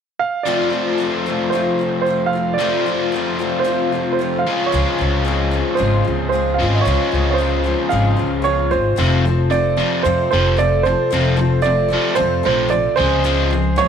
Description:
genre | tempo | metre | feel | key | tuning
folk rock and heartland rock | 113 BPM | 4/4 | straight | F major | A4 = 439 Hz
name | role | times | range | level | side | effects
warm grand piano | melody | 0.2-13.9 s | C5 to F5 | -20 LUFS | right 6 dB | none
picked twelve-string acoustic guitar | accompaniment | 0.5-13.9 s | F2 to A4 | -22 LUFS | left 9 dB | none
biting overdriven guitar | riff | 0.5-13.9 s | F2 to F4 | -21 LUFS | left 1 dB | none
upright bass | bass | 4.7-13.8 s | F1 to F2 | -19 LUFS | left 1 dB | tube saturation
room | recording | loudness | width
light reverb | 1960s-style stereo with parts hard left and right | -15 LUFS | side -7 dB against mid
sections
0.5-9.0 A section; 9.0-13.9 B section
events
none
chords
0.5 F; 4.5 Dbmaj7; 9.0 F; 13.0 Dbmaj7

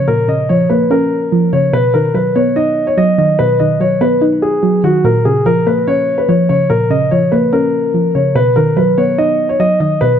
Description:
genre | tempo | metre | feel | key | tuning
hip hop | 145 BPM | 4/4 | half-time | Bb phrygian | A4 = 437 Hz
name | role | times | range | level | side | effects
dark concert grand piano | melody | 0.0-10.2 s | F#4 to Eb5 | -13 LUFS | left 1 dB | low-pass filter
soft round pluck | accompaniment | 0.0-10.2 s | Bb2 to D#4 | -14 LUFS | right 1 dB | chorus, low-pass filter
room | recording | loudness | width
light reverb, studio ambience | dark, warm production | -10 LUFS | side -8 dB against mid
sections
0.0-10.2 A section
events
none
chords
0.0 Bbm; 1.7 B; 5.0 Bbm; 8.4 B

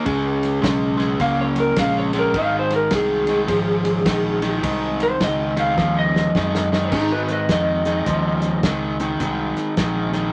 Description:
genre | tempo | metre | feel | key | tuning
electric blues shuffle | 105 BPM | 4/4 | swing 63% on 8ths | Ab mixolydian | A4 = 440 Hz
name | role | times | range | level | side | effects
overdriven electric guitar | riff | 0.0-10.3 s | Ab2 to Bb3 | -24 LUFS | equal | none
fingered electric bass | bass | 0.1-10.3 s | Ab1 to Ab2 | -28 LUFS | equal | none
warm soul drum kit | drums | 0.1-10.2 s | crash cymbal, hi-hat, kick drum, ride cymbal, snare drum | -28 LUFS | equal | none
electric slide guitar | melody | 1.2-8.6 s | Eb4 to F5 | -24 LUFS | equal | none
room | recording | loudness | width
moderate studio reverb, RT60 0.6 s | none | -20 LUFS | mono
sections
0.0-6.9 A section; 6.9-10.3 B section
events
electric slide guitar solo 0.0-6.9; drum fill 5.8-6.9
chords
0.1 Db5; 2.3 Ab7; 6.9 Ab5

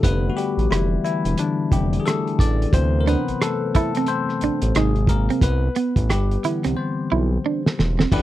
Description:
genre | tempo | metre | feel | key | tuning
R&B, neo-soul | 89 BPM | 4/4 | swing 61% on 16ths | unclear | A4 = 440 Hz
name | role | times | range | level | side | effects
barky tine electric piano | accompaniment | 0.0-8.2 s | C3 to D5 | -23 LUFS | left 4 dB | phaser
smooth synth bass | bass | 0.0-8.2 s | E1 to D2 | -21 LUFS | right 1 dB | none
cloth-damped thuddy drum kit | drums | 0.0-8.2 s | crash cymbal, hi-hat, kick drum, rim click, snare drum | -20 LUFS | right 1 dB | none
clean electric guitar | second line | 3.1-8.1 s | B3 to E4 | -23 LUFS | right 8 dB | none
room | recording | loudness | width
little or no reverb | dry, close 1970s-style studio recording | -18 LUFS | side -14 dB against mid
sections
0.0-8.1 A section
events
tine electric piano solo 0.0-8.1; drum fill 6.8-8.1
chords
0.0 F69; 2.7 D13; 4.7 Ab9; 5.4 Cmaj9

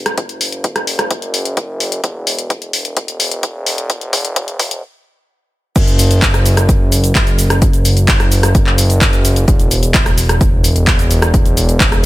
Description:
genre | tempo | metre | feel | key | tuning
EDM, festival progressive house | 129 BPM | 4/4 | straight | unclear | A4 = 442 Hz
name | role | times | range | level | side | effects
fat analog bass | bass | 0.0-12.1 s | E1 to F#1 | -16 LUFS | equal | sidechain pumping, high-pass filter
house drum kit | drums | 0.1-12.0 s | cabasa, crash cymbal, handclaps, hi-hat, rim click | -17 LUFS | left 1 dB | none
electronic kick drum | drums | 0.2-11.9 s | none | -14 LUFS | equal | high-pass filter on kick
room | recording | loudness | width
little or no reverb | high-pass filter | -11 LUFS | side -17 dB against mid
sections
0.0-5.8 A section; 5.8-12.1 B section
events
build-up 0.0-5.8; drum fill 2.0-4.8; stop 4.8-5.8; drop 5.8-12.1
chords
none

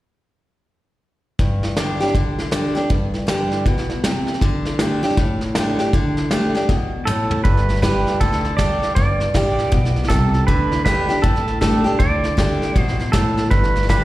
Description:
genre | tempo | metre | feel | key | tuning
honky-tonk and classic country | 158 BPM | 4/4 | swing 62% on 8ths | G major | A4 = 441 Hz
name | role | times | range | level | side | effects
picked steel-string acoustic guitar | accompaniment | 1.4-14.0 s | G2 to G4 | -20 LUFS | left 1 dB | slapback echo
vintage brush drum kit | drums | 1.4-14.0 s | hi-hat, kick drum, snare drum, toms | -21 LUFS | equal | none
pedal steel guitar | second line | 7.1-14.0 s | A4 to D5 | -22 LUFS | right 3 dB | slapback echo
upright bass | bass | 7.5-14.0 s | G1 to D2 | -21 LUFS | equal | none
room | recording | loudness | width
little or no reverb | live gig heard through the venue's PA, recital hall reverb | -16 LUFS | side -16 dB against mid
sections
1.4-7.4 A section; 7.4-14.0 B section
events
drum fill 6.7-7.4; pedal steel guitar solo 7.4-14.0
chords
1.4 G5; 4.4 Dsus4; 7.4 Gsus2; 10.5 Dsus4; 13.5 G5

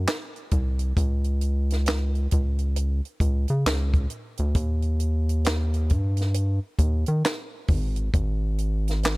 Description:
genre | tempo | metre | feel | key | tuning
R&B, neo-soul | 67 BPM | 4/4 | swing 63% on 16ths | unclear | A4 = 440 Hz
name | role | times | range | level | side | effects
rubbery square bass | bass | 0.0-9.2 s | G#1 to D#3 | -23 LUFS | equal | none
compact cocktail drum kit | drums | 0.1-9.2 s | handclaps, hi-hat, kick drum, snare drum | -26 LUFS | equal | none
room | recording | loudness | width
little or no reverb | none | -22 LUFS | side -23 dB against mid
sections
0.0-9.2 A section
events
none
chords
none

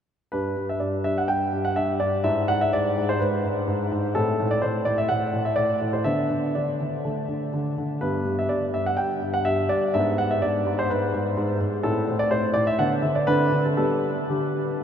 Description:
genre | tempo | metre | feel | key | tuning
classical-period piano sonatina | 125 BPM | 4/4 | rubato | G major | A4 = 437 Hz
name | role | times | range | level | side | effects
warm grand piano | solo | 0.3-14.8 s | G2 to G5 | -22 LUFS | equal | none
room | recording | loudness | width
wet huge ambient reverb, RT60 7.3 s | in a vast, echoing space | -22 LUFS | side -8 dB against mid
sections
0.3-14.8 A section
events
none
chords
0.3 G5; 2.3 E7/G#; 4.2 Am; 6.0 Bmadd11/D; 7.0 D5; 8.0 G; 9.9 G#dim; 11.8 Am; 12.8 D69; 13.3 Amadd11/D; 13.8 G

